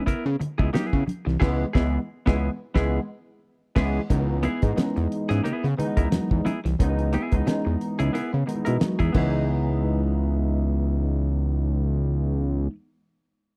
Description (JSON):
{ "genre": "funk", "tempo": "89 BPM", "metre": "4/4", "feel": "swing 56% on 16ths", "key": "C# minor", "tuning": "A4 = 440 Hz", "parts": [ { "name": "semi-hollow electric guitar", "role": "accompaniment", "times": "0.0-12.7 s", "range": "B3 to A#4", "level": "-33 LUFS", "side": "equal", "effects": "none" }, { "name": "electric guitar at the edge of break-up", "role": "riff", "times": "0.0-9.6 s", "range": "E3 to C#4", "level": "-34 LUFS", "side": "equal", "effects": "analog chorus" }, { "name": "barky tine electric piano", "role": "stabs", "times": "0.0-12.7 s", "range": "D#3 to G#4", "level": "-31 LUFS", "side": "equal", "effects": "overdrive, ensemble chorus, slapback echo" }, { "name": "fat analog bass", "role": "bass", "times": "0.1-12.7 s", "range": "B#1 to C#3", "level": "-26 LUFS", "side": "equal", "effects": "none" }, { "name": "damped 70s drum kit", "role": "drums", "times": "0.1-9.3 s", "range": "crash cymbal, hi-hat, kick drum, snare drum", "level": "-26 LUFS", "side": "equal", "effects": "none" }, { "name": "cowbell", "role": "percussion", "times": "0.1-9.8 s", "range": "none", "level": "-42 LUFS", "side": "equal", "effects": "none" }, { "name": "congas", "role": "percussion", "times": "0.4-9.8 s", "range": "none", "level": "-34 LUFS", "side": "equal", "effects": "none" } ], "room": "studio ambience", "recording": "dry, close 1970s-style studio recording", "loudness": "-24 LUFS", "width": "mono", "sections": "0.0-4.1 A section; 4.1-9.5 B section; 9.5-12.2 C section", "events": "band accent 1.4-4.1", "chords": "0.0 C#m7", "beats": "0.07 0.74 | 1.41 2.09 2.76 3.43 | 4.10 4.77 5.45 6.12 | 6.79 7.46 8.14 8.81 | 9.48 10.15 10.83 11.50" }